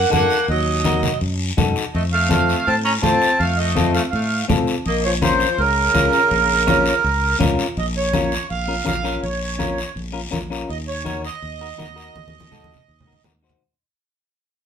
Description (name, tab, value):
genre	latin, cumbia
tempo	165 BPM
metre	4/4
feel	straight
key	Bb harmonic minor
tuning	A4 = 440 Hz
part	accordion	melody	0.0-13.2 s	Bb4 to Bb5	-20 LUFS	right 4 dB	none
part	bright tenor saxophone	second line	0.0-7.4 s	Db3 to Db4	-25 LUFS	left 4 dB	none
part	fingered electric bass	bass	0.0-13.5 s	Bb1 to A2	-24 LUFS	equal	none
part	semi-hollow electric guitar	accompaniment	0.1-13.6 s	C4 to Db5	-24 LUFS	left 4 dB	none
part	congas	percussion	0.1-13.6 s	none	-24 LUFS	left 1 dB	none
part	guiro	percussion	0.1-13.6 s	none	-29 LUFS	left 5 dB	none
room	wet studio reverb, RT60 0.6 s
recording	band playing live in one room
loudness	-17 LUFS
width	side -8 dB against mid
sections	0.0-7.8 A section; 7.8-13.6 B section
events	fade-out 7.8-13.6; drum fill 12.2-13.6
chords	0.0 Ebm; 1.9 F; 4.9 Bbm; 10.7 Ebm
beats	0.12 | 0.48 0.85 1.21 1.58 | 1.94 2.30 2.67 3.03 | 3.40 3.76 4.12 4.49 | 4.85 5.22 5.58 5.95 | 6.31 6.67 7.04 7.40 | 7.77 8.13 8.50 8.86 | 9.23 9.59 9.96 10.32 | 10.69 11.06 11.42 11.79 | 12.15 12.52 12.89 13.26